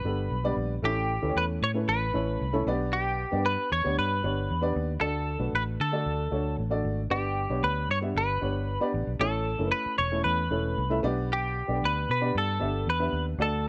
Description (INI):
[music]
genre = uptempo 1960s-style soul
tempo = 115 BPM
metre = 4/4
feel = straight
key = unclear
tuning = A4 = 440 Hz
[part]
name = semi-hollow electric guitar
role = melody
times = 0.0-13.7 s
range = G4 to C#5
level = -31 LUFS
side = equal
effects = analog chorus
[part]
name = dark upright piano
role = accompaniment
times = 0.0-13.7 s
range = G3 to E5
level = -34 LUFS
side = equal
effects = none
[part]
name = vintage muted fingered electric bass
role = bass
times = 0.0-13.7 s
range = E1 to D3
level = -33 LUFS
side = equal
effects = none
[sound]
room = studio ambience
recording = none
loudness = -28 LUFS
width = mono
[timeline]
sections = 0.0-13.7 A section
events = none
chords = 0.0 G; 0.8 A; 2.7 G/B; 5.0 D; 7.1 G; 9.2 A; 11.0 G/B